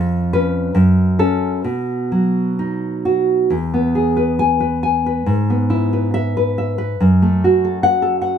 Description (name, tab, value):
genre	romantic piece for solo classical guitar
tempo	64-75 BPM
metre	2/4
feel	rubato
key	E major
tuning	A4 = 440 Hz
part	nylon-string guitar	solo	0.0-8.4 s	E2 to G#5	-15 LUFS	equal	none
room	light reverb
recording	close, detailed microphones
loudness	-15 LUFS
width	side -8 dB against mid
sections	0.0-3.5 A section; 3.5-8.4 B section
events	none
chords	0.0 C#7/E#; 0.8 F#m; 1.7 B; 3.5 E; 5.3 E/G#; 7.0 F#m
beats	0.76 | 1.66 2.59 | 3.52 4.41 | 5.28 6.14 | 7.00 7.83